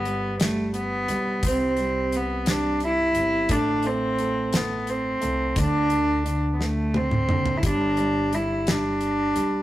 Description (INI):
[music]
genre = six-eight pop ballad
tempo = 58 BPM (dotted quarters)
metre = 6/8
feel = straight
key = G major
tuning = A4 = 441 Hz
[part]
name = warm cello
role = melody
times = 0.0-9.6 s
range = A3 to E4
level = -23 LUFS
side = equal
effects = none
[part]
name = dark upright piano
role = accompaniment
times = 0.0-9.6 s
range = C3 to A3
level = -30 LUFS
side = right 1 dB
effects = none
[part]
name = upright bass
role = bass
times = 0.0-9.6 s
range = F#1 to D2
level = -31 LUFS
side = equal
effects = none
[part]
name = damped 70s drum kit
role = drums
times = 0.1-9.5 s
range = hi-hat, kick drum, snare drum, toms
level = -26 LUFS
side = equal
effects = none
[sound]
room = moderate stone room reverb, RT60 1.0 s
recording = rough rehearsal-room recording, tube saturation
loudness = -21 LUFS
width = side -14 dB against mid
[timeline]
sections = 0.0-9.6 A section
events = drum fill 6.6-7.6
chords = 0.0 G; 1.4 C; 3.5 Am; 5.6 D; 7.6 G